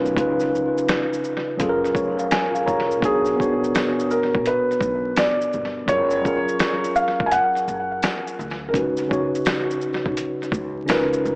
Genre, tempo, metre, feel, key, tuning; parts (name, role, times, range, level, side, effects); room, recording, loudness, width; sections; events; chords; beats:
lo-fi hip hop; 84 BPM; 4/4; swing 64% on 16ths; F# major; A4 = 441 Hz
tine electric piano; accompaniment; 0.0-11.4 s; B2 to A#5; -22 LUFS; equal; overdrive, fast stereo tremolo, cassette tape, low-pass filter, tape echo
upright bass; bass; 0.1-11.4 s; E#1 to D2; -34 LUFS; equal
trip hop sampler-style drum kit; drums; 0.1-11.4 s; hi-hat, kick drum, shaker, snare drum; -25 LUFS; equal; overdrive, tape echo
felt-muted upright piano; melody; 3.0-8.7 s; G#4 to G#5; -21 LUFS; equal; low-pass filter, tape echo
tambourine; percussion; 3.7-11.1 s; -45 LUFS; right 1 dB
moderate spring reverb, RT60 2.5 s; echo-heavy mix, vinyl crackle, small speaker sound; -19 LUFS; side -28 dB against mid
0.0-3.0 A section; 3.0-11.4 B section
tine electric piano fill 1.6-3.0
0.2 C#9; 1.6 F#maj9; 3.0 Bmadd9; 5.9 F#maj9; 8.7 C#9sus4
| 0.17 0.88 1.59 2.31 | 3.02 3.74 4.45 5.17 | 5.88 6.59 7.31 8.02 | 8.74 9.45 10.17 10.88